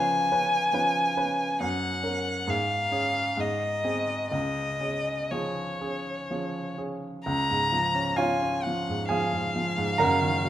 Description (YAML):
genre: classical, romantic duo for violin and grand piano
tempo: 60-70 BPM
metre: 3/4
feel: rubato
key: Db major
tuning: A4 = 440 Hz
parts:
  - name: rich violin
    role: melody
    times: 0.0-10.5 s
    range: Db5 to Bb5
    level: -27 LUFS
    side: left 1 dB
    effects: none
  - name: clear baby grand piano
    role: accompaniment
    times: 0.0-10.5 s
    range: Gb1 to Bb5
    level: -28 LUFS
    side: right 1 dB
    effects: none
room: moderate recital hall reverb, RT60 1.6 s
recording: minimal, uncompressed stereo recording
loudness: -25 LUFS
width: side -12 dB against mid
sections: 0.0-7.3 A section; 7.3-10.5 B section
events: none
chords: 0.0 C#7; 1.6 Gb; 2.5 Db/Ab; 3.4 Ab; 4.3 Db